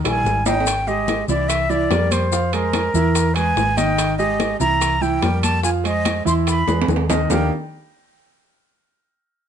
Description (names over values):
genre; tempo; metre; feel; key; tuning
Afro-Cuban jazz; 145 BPM; 4/4; straight; unclear; A4 = 441 Hz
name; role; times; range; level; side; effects
clear concert grand piano; accompaniment; 0.0-7.5 s; Eb3 to F5; -22 LUFS; right 3 dB; none
hollow-body short-scale fingered electric bass; bass; 0.0-7.5 s; Ab1 to F2; -22 LUFS; left 1 dB; none
congas; percussion; 0.0-7.4 s; none; -28 LUFS; left 3 dB; none
breathy concert flute; melody; 0.1-7.5 s; Bb4 to C6; -21 LUFS; equal; plate reverb
bongos; percussion; 0.1-7.4 s; none; -28 LUFS; left 10 dB; none
maracas; percussion; 0.1-7.4 s; none; -30 LUFS; left 9 dB; none
timbales; percussion; 0.1-7.4 s; none; -26 LUFS; right 6 dB; none
room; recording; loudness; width
light reverb; nothing above 10.6 kHz; -16 LUFS; side -8 dB against mid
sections
0.7-7.3 A section; 7.3-9.0 B section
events
drum fill 0.0-0.7, 6.7-7.3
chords
0.0 Eb; 0.7 Abmaj7; 1.5 C7; 2.3 Fm; 3.2 E; 4.0 Abmaj7; 4.8 C7; 5.6 Fm7; 6.5 E; 7.3 Ebmaj7